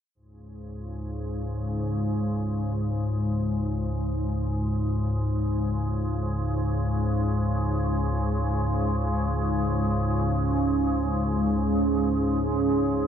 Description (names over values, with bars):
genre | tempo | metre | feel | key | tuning
dark ambient drone | free time | none | none | unclear | A4 = 442 Hz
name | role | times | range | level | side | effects
organ-like drone | drone | 0.4-13.1 s | C#2 to G#2 | -24 LUFS | left 1 dB | ensemble chorus, built-in reverb
deep dark ambient pad | sustained chords | 10.3-13.1 s | C#4 to C#5 | -26 LUFS | right 4 dB | chorus, built-in reverb
room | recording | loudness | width
wet cathedral reverb, RT60 6.2 s | none | -24 LUFS | side -8 dB against mid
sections
0.2-13.1 A section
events
none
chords
0.2 C#5